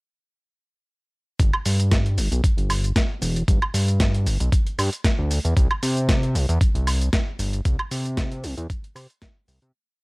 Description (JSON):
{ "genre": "nu-disco, nu disco", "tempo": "115 BPM", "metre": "4/4", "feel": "swing 54% on 16ths", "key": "G major", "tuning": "A4 = 439 Hz", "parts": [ { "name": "fat analog bass", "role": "bass", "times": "1.4-9.7 s", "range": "E1 to C3", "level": "-22 LUFS", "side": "equal", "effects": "none" }, { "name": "dusty soul sampler-style drum kit", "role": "drums", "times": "1.4-9.7 s", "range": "hi-hat, shaker, snare drum, woodblock", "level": "-26 LUFS", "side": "equal", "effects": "overdrive" }, { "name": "electronic kick drum", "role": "drums", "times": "1.4-9.3 s", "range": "none", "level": "-20 LUFS", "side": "equal", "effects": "overdrive" } ], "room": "digital ambience", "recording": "dry, gritty hardware recording", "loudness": "-19 LUFS", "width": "side -27 dB against mid", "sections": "1.4-9.7 drop", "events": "drop 1.4-9.7; fade-out 7.0-9.7", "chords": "none" }